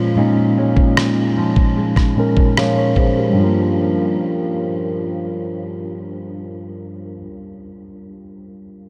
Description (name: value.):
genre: contemporary R&B.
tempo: 75 BPM.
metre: 4/4.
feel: straight.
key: G minor.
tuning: A4 = 437 Hz.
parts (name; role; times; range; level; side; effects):
mellow tine electric piano; accompaniment; 0.0-8.9 s; Bb2 to F5; -21 LUFS; equal; low-pass filter.
nylon-string guitar; arpeggios; 0.0-7.4 s; G2 to D4; -24 LUFS; equal; low-pass filter, delay.
dusty soul sampler-style drum kit; drums; 0.8-3.1 s; kick drum, rim click; -21 LUFS; equal; none.
room: moderate huge ambient reverb, RT60 9.5 s.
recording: dreamy mix soaked in reverb.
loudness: -17 LUFS.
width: mono.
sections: 0.0-3.4 A section; 3.4-6.6 B section.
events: filter sweep 0.0-3.4.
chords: 0.0 Bbm7; 3.4 Gm7.